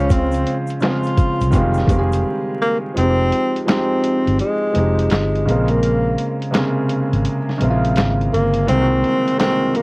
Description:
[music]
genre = lo-fi hip hop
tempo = 84 BPM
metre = 4/4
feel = swing 64% on 16ths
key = F minor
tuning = A4 = 440 Hz
[part]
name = breathy tenor saxophone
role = melody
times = 0.0-9.8 s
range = Ab3 to F4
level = -19 LUFS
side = equal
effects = none
[part]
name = felt-muted upright piano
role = accompaniment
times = 0.0-9.8 s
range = C2 to C5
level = -20 LUFS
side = right 1 dB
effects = cassette tape
[part]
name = vintage muted fingered electric bass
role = bass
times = 0.0-9.0 s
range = F1 to Db2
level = -19 LUFS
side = equal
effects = none
[part]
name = lo-fi sampler-style drum kit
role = drums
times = 0.1-9.8 s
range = handclaps, hi-hat, kick drum, snare drum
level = -19 LUFS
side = equal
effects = cassette tape
[part]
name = egg shaker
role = percussion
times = 0.1-2.2 s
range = none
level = -47 LUFS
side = left 3 dB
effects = none
[sound]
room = light reverb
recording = home recording on cassette, vinyl crackle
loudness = -15 LUFS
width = side -28 dB against mid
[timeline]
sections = 0.0-3.0 A section; 3.0-9.8 B section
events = break 2.2-3.0; kick muted 3.0-9.8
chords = 0.0 Dbmaj7; 1.5 Fm9; 5.5 Bbm9; 8.7 Ab9/C

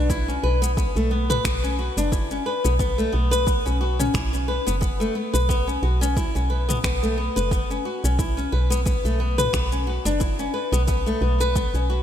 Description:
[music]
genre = organic downtempo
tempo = 89 BPM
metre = 4/4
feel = swing 56% on 16ths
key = unclear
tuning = A4 = 442 Hz
[part]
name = flamenco guitar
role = arpeggios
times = 0.0-12.0 s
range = A3 to B4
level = -24 LUFS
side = left 2 dB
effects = ping-pong delay
[part]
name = woody FM bass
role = bass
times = 0.0-12.0 s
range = F#1 to B1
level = -23 LUFS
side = right 1 dB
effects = sidechain pumping
[part]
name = deep house drum kit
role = drums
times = 0.1-11.9 s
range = finger snaps, shaker, toms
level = -31 LUFS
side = left 1 dB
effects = gated reverb
[part]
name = electronic kick drum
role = drums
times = 0.1-11.7 s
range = none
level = -25 LUFS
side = right 1 dB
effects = overdrive
[sound]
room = light reverb, digital ambience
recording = bright 1980s-style digital production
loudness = -20 LUFS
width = side -10 dB against mid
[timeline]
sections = 0.0-12.0 A section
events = none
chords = 0.0 B5; 2.8 N.C.; 8.2 B5

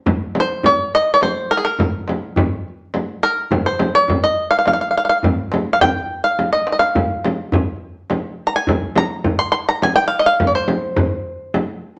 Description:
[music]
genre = Persian modal ensemble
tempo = 105 BPM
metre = 3/4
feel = straight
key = C dastgah shur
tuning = A4 = 439 Hz
[part]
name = frame drum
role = percussion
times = 0.1-11.7 s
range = none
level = -22 LUFS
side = equal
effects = none
[part]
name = tombak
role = percussion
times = 0.1-12.0 s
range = none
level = -28 LUFS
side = equal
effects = none
[part]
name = bluegrass banjo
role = melody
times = 0.4-11.6 s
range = Ab4 to C6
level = -18 LUFS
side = equal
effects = none
[sound]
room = wet studio reverb, RT60 0.8 s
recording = none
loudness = -18 LUFS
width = mono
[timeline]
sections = 0.1-12.0 A section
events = drum fill 6.4-7.0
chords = none

